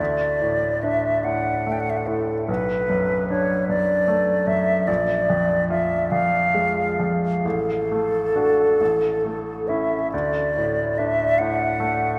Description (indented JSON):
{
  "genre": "classical, romantic duo for flute and grand piano",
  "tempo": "43-51 BPM (dotted quarters)",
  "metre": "6/8",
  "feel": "rubato",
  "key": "D major",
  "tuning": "A4 = 441 Hz",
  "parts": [
    { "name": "mellow silver concert flute", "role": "melody", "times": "0.0-12.2 s", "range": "A4 to G5", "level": "-23 LUFS", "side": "equal", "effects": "none" },
    { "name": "bright baby grand piano", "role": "accompaniment", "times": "0.0-12.2 s", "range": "A1 to F#4", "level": "-27 LUFS", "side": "equal", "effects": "none" }
  ],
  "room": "wet cathedral reverb, RT60 5.7 s",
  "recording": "in a vast, echoing space",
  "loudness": "-22 LUFS",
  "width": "mono",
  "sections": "0.0-12.2 A section",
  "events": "none",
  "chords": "0.0 D5; 2.5 Bm7; 4.9 Bb7; 7.4 D/A; 8.8 A; 10.1 D"
}